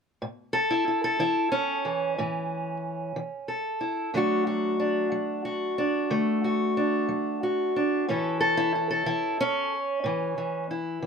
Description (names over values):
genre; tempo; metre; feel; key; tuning
acoustic country blues, solo or duo; 61 BPM (dotted quarters); 12/8; straight; A major; A4 = 440 Hz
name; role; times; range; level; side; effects
fingerpicked steel-string acoustic guitar; solo; 0.2-11.1 s; A2 to A4; -24 LUFS; equal; none
room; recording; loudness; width
light reverb; close, detailed microphones; -24 LUFS; side -6 dB against mid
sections
0.2-11.1 A section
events
none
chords
0.2 A; 4.1 D; 8.1 A